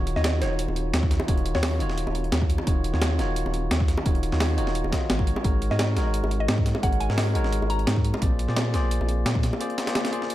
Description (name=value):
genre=liquid drum and bass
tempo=173 BPM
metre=4/4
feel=swing 54% on 16ths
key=Eb dorian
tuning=A4 = 440 Hz
part: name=bell-like tine electric piano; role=accompaniment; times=0.0-10.3 s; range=Eb3 to Eb5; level=-29 LUFS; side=left 1 dB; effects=ping-pong delay
part: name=warm sub bass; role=bass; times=0.0-9.5 s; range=Eb1 to Bb2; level=-25 LUFS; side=equal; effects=none
part: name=breakbeat sampler-style drum kit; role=drums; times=0.1-10.3 s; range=hi-hat, snare drum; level=-30 LUFS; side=equal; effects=none
part: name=breakbeat sampler-style drum kit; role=drums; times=0.1-10.3 s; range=hi-hat, snare drum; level=-34 LUFS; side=equal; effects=high-pass filter on snare, high-pass filter on hats
part: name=mallet-like synth pluck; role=melody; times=0.2-2.0, 5.7-8.2 s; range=Db5 to Bb5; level=-33 LUFS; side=left 1 dB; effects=chorus, ping-pong delay
part: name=bongos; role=percussion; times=0.2-10.0 s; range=none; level=-34 LUFS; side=equal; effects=none
part: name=electronic kick drum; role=drums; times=1.0-9.4 s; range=none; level=-24 LUFS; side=equal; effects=overdrive
room=light reverb, digital ambience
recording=dark, warm production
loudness=-22 LUFS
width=side -14 dB against mid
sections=0.0-10.3 A section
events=break 9.6-10.3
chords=0.0 Ebm9; 5.3 Ab9sus4; 8.2 Bb7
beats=0.24 0.59 0.94 | 1.28 1.63 1.98 2.32 | 2.67 3.02 3.36 3.71 | 4.06 4.41 4.75 5.10 | 5.45 5.79 6.14 6.49 | 6.83 7.18 7.53 7.87 | 8.22 8.57 8.91 9.26 | 9.61 9.95 10.30